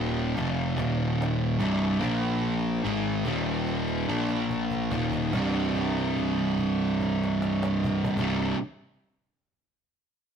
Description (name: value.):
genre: stoner and doom metal.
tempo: 72 BPM.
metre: 4/4.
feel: straight.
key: C minor.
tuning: A4 = 439 Hz.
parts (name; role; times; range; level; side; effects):
fuzz guitar; riff; 0.0-8.6 s; C2 to Bb3; -25 LUFS; equal; distortion.
fuzz picked electric bass; bass; 0.0-8.5 s; C1 to Bb1; -33 LUFS; right 1 dB; overdrive.
cajon; drums; 0.4-8.4 s; none; -36 LUFS; equal; none.
room: light reverb.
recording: rough rehearsal-room recording, warm saturation.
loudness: -24 LUFS.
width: side -7 dB against mid.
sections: 0.0-5.3 A section; 5.3-8.7 B section.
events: drum fill 3.7-5.3; held note 5.3-8.2.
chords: 0.4 F5; 0.8 Eb5; 1.6 C5; 2.0 Bb5; 2.8 Ab5; 3.2 Eb5; 4.1 Bb5; 4.9 Eb5; 5.3 C5.